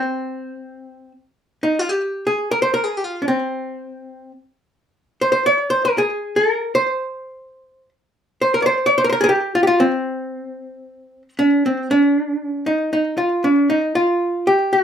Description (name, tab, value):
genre	arabic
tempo	117 BPM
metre	4/4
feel	straight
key	C maqam bayati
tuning	A4 = 440 Hz
part	archtop guitar, miked and amplified	solo	0.0-14.8 s	C4 to D5-50c	-17 LUFS	equal	slapback echo
room	light reverb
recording	rough home demo mix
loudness	-16 LUFS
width	side -8 dB against mid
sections	0.0-11.6 A section; 11.6-14.8 B section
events	none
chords	none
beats	0.32 0.84 | 1.35 1.87 2.38 2.90 | 3.41 3.92 4.44 4.95 | 5.47 5.98 6.50 7.01 | 7.52 8.04 8.55 9.07 | 9.58 10.09 10.61 11.12 | 11.63 12.15 12.66 13.18 | 13.69 14.21 14.72